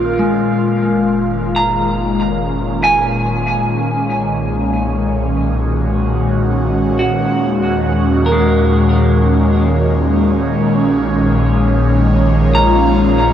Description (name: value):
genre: ambient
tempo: 71 BPM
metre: 4/4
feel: straight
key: B lydian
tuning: A4 = 439 Hz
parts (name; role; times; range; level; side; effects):
- airy breathy pad; sustained chords; 0.0-13.3 s; A#2 to F#4; -15 LUFS; equal; chorus, phaser
- semi-hollow electric guitar; arpeggios; 0.0-13.3 s; G#3 to A#5; -18 LUFS; left 1 dB; tape echo
- warm sub bass; bass; 0.0-13.3 s; F#1 to D#2; -19 LUFS; equal; transformer saturation
room: wet huge ambient reverb, RT60 8.4 s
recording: worn, warbling old tape, cassette tape, warbly pitch drift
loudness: -12 LUFS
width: side -10 dB against mid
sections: 0.0-13.3 A section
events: fade-in on sub bass 0.0-13.3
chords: 0.0 A#m7; 0.5 F#maj7; 3.9 Bmaj7; 7.3 D#m7; 10.7 A#m7